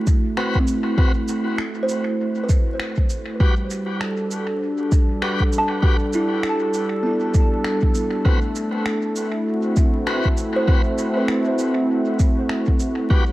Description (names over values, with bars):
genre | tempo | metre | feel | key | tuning
ambient dub | 99 BPM | 4/4 | swing 60% on 16ths | A dorian | A4 = 438 Hz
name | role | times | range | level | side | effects
warm analog pad | sustained chords | 0.0-13.3 s | G3 to A4 | -22 LUFS | equal | chorus
electronic cabasa and finger snaps | drums | 0.1-12.9 s | none | -33 LUFS | equal | small room ambience, dub echo
electronic kick drum | drums | 0.1-13.2 s | none | -18 LUFS | equal | small room ambience
bright tonewheel organ | stabs | 0.4-13.2 s | C4 to B4 | -29 LUFS | left 2 dB | overdrive, fast rotary speaker, dub echo
buzzing kalimba | arpeggios | 0.6-13.3 s | B3 to A5 | -27 LUFS | right 1 dB | tape echo
room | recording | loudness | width
light reverb, digital ambience | dark, warm production, vinyl crackle | -18 LUFS | side -17 dB against mid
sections
0.0-13.3 A section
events
none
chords
0.0 Am69; 3.4 Gmaj7; 8.3 Am69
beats
0.37 | 0.98 1.58 2.19 2.80 | 3.40 4.01 4.62 5.22 | 5.83 6.43 7.04 7.65 | 8.25 8.86 9.46 10.07 | 10.68 11.28 11.89 12.49 | 13.10